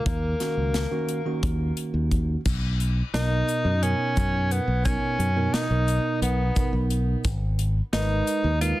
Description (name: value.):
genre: progressive instrumental, band music in an uneven meter.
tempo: 175 BPM (eighths).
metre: 7/8.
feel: straight.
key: unclear.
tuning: A4 = 440 Hz.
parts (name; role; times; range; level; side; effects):
clear tenor saxophone; melody; 0.0-8.8 s; Bb3 to F4; -28 LUFS; left 1 dB; digital delay.
bell-like tine electric piano; accompaniment; 0.0-8.8 s; B2 to Cb5; -29 LUFS; right 3 dB; none.
fingered electric bass; bass; 0.1-8.7 s; Ab1 to F#2; -24 LUFS; equal; none.
modern studio drum kit; drums; 0.1-8.8 s; crash cymbal, hi-hat, kick drum, snare drum; -28 LUFS; equal; none.
tube shaker; percussion; 2.5-8.6 s; none; -45 LUFS; left 6 dB; none.
room: small room ambience.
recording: dense, heavily limited modern master.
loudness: -22 LUFS.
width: side -17 dB against mid.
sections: 0.0-2.5 A section; 2.5-8.8 B section.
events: none.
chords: 0.1 Ebm7; 2.5 Bmaj7; 7.2 Abmadd9.